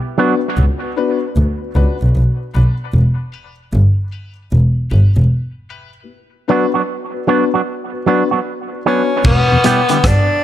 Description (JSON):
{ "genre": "dub reggae", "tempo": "76 BPM", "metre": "4/4", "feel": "swing 64% on 16ths", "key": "E dorian", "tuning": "A4 = 440 Hz", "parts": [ { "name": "electric guitar with an envelope filter", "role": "accompaniment", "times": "0.2-0.3, 6.5-10.0 s", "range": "F#3 to G4", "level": "-18 LUFS", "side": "right 7 dB", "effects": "high-pass filter, dub echo" }, { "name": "dark upright piano", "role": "stabs", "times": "0.2-9.0 s", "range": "B3 to B4", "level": "-20 LUFS", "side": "left 6 dB", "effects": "high-pass filter, dub echo" }, { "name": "dark double bass", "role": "bass", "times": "0.6-10.1 s", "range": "E1 to D2", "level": "-13 LUFS", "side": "equal", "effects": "none" }, { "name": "warm tenor saxophone", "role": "melody", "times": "8.9-10.4 s", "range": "B3 to D4", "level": "-15 LUFS", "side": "left 1 dB", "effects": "dub echo" }, { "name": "crunchy breakbeat drum kit", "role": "drums", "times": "9.2-10.3 s", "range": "crash cymbal, hi-hat, kick drum, rim click", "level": "-16 LUFS", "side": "equal", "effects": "none" }, { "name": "mellow tonewheel organ", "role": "accompaniment", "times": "9.5-9.6 s", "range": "E2 to B2", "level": "-16 LUFS", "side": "left 2 dB", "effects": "overdrive, chorus vibrato, slow rotary speaker" }, { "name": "electric guitar at the edge of break-up", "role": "arpeggios", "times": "9.6-10.0 s", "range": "B2 to D3", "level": "-20 LUFS", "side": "left 8 dB", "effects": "lush chorus, dub echo" } ], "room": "light reverb, studio reverb", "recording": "none", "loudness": "-13 LUFS", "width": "side -12 dB against mid", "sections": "0.0-9.2 A section; 9.2-10.4 B section", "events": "break 0.0-6.1; filter sweep 0.0-6.1", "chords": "0.0 Bm; 2.9 Em; 6.1 Bm; 9.2 Em" }